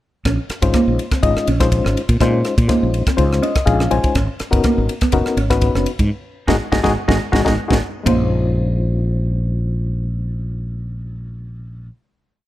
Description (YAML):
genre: electric jazz fusion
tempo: 123 BPM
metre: 4/4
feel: swing 53% on 16ths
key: Bb minor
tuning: A4 = 440 Hz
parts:
  - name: mellow electric guitar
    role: stabs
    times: 0.3-8.2 s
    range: Ab3 to Eb4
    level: -22 LUFS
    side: right 4 dB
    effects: analog chorus
  - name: mellow fretless electric bass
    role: bass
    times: 0.3-11.9 s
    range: Gb1 to Bb2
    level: -19 LUFS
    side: equal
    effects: none
  - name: crisp fusion drum kit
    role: drums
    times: 0.3-8.2 s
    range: kick drum, ride cymbal, rim click, snare drum, toms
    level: -20 LUFS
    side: equal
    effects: none
  - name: reed electric piano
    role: accompaniment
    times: 0.6-11.9 s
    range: Ab3 to Ab5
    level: -20 LUFS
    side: left 4 dB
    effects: fast tremolo
room: light reverb, small room ambience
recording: none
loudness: -15 LUFS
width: side -14 dB against mid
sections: 0.3-8.1 groove; 8.1-12.0 final chord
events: reed electric piano fill 3.2-4.2, 7.1-8.1; band accent 6.1-8.1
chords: 0.3 Bbm11; 4.2 Abm11; 8.1 Bbm11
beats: | 0.26 0.74 1.23 1.72 | 2.20 2.69 3.18 3.66 | 4.15 4.64 5.13 5.62 | 6.11 6.60 7.08 7.57 | 8.06 8.55 9.04 9.53 | 10.02 10.50 10.99 11.48